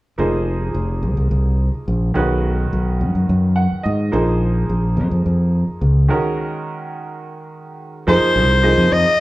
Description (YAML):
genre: electric jazz fusion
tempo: 213 BPM (eighths)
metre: 7/8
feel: straight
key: unclear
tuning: A4 = 439 Hz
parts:
  - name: bright grand piano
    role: accompaniment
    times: 0.2-9.0 s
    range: D#3 to F#5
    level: -22 LUFS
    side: right 2 dB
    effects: none
  - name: fingered electric bass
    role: bass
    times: 0.2-9.0 s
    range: F1 to Ab2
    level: -17 LUFS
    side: equal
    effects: none
  - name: growling soprano saxophone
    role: melody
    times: 8.1-9.2 s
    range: C5 to Eb5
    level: -14 LUFS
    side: left 1 dB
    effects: none
room: moderate large studio reverb, RT60 0.9 s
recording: band playing live in one room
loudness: -15 LUFS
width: side -17 dB against mid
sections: 0.2-8.1 A section; 8.1-9.2 B section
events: grand piano fill 3.3-4.1; break 6.1-8.1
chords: 0.2 Fm7; 2.2 Badd9; 4.1 Bbm11; 6.1 Gbadd9; 8.1 Fm7